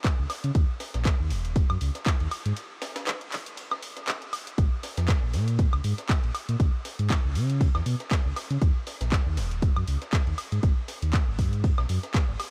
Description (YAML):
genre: deep house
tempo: 119 BPM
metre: 4/4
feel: swing 56% on 16ths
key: unclear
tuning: A4 = 440 Hz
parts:
  - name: breakbeat sampler-style drum kit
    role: drums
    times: 0.0-12.5 s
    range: hi-hat, ride cymbal, snare drum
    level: -43 LUFS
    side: equal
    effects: high-pass filter on snare, high-pass filter on cymbals, high-pass filter on hats, high-pass filter on room
  - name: electronic kick drum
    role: drums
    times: 0.0-12.3 s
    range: none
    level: -26 LUFS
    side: equal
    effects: overdrive
  - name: house drum kit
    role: drums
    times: 0.0-12.5 s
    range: handclaps, hi-hat, woodblock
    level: -37 LUFS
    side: equal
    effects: overdrive
  - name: sub bass with octave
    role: bass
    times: 0.2-12.4 s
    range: Eb1 to Db3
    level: -29 LUFS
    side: equal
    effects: sidechain pumping
room: digital ambience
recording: cassette tape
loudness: -27 LUFS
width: mono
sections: 0.0-12.5 A section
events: break 2.6-4.6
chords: none